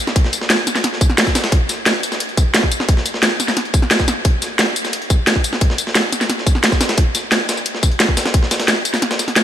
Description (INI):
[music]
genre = drum and bass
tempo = 176 BPM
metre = 4/4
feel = straight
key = none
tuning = none
[part]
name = breakbeat sampler-style drum kit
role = drums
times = 0.1-9.4 s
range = hi-hat, snare drum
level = -23 LUFS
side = equal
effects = high-pass filter on snare, studio reverb, high-pass filter on hats
[part]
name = drum and bass drum kit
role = drums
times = 0.1-9.4 s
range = hi-hat, snare drum, tambourine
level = -16 LUFS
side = equal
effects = overdrive, studio reverb
[part]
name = electronic kick drum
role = drums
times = 0.2-8.4 s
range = none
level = -15 LUFS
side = equal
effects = studio reverb
[sound]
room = light reverb, digital ambience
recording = none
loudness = -14 LUFS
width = side -10 dB against mid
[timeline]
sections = 0.0-9.4 A section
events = kick drops out 9.0-9.4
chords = none